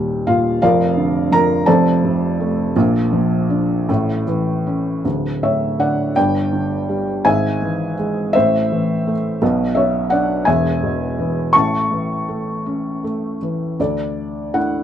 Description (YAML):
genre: classical, lyrical solo piano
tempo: 51-58 BPM (dotted quarters)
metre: 6/8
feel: rubato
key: Bb major, D major from 5.0 s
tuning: A4 = 440 Hz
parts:
  - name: felt-muted upright piano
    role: solo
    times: 0.0-14.8 s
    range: D1 to C#6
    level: -16 LUFS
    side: equal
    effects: none
room: light reverb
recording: dark, warm production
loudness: -16 LUFS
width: side -10 dB against mid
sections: 0.0-5.0 A section; 5.0-13.8 B section; 13.8-14.8 C section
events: none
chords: 0.0 Eb; 0.6 Bb/F; 1.7 F6; 2.8 Bb; 3.9 A; 5.0 D5; 6.2 G5; 7.3 E/G#; 8.3 Am; 9.4 Bm; 10.5 E; 11.5 A; 13.8 Dsus2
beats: | 0.62 1.67 | 2.75 3.89 | 5.05 6.16 | 7.25 8.35 | 9.41 10.47 | 11.54 12.65 | 13.79